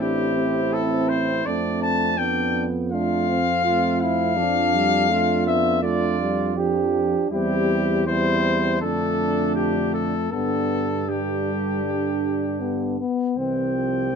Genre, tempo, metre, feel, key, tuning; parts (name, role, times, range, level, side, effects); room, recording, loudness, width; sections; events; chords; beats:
classical, brass quintet; 81 BPM; 4/4; straight; A4 = 440 Hz
clear trumpet; melody; 0.0-14.2 s; G4 to A5; -24 LUFS; left 7 dB
mellow flugelhorn; second line; 0.0-14.2 s; D4 to G4; -27 LUFS; right 7 dB
mellow French horn; accompaniment; 0.0-14.2 s; G3 to D4; -28 LUFS; left 2 dB
warm trombone; accompaniment; 0.0-14.2 s; D3 to C4; -28 LUFS; right 3 dB
warm tuba; bass; 0.0-14.2 s; A1 to G2; -27 LUFS; right 4 dB
light reverb; minimal, uncompressed stereo recording; -20 LUFS; side -6 dB against mid
0.0-13.4 A section
0.0 F/A (rootless); 1.5 Dm7/F; 4.4 G7/F; 7.3 C/E; 8.8 Dm/F; 10.3 G; 13.4 C
0.00 0.73 | 1.46 2.19 2.92 3.65 | 4.38 5.11 5.84 6.58 | 7.32 8.07 8.82 9.56 | 10.32 11.08 11.85 12.61 | 13.37 14.11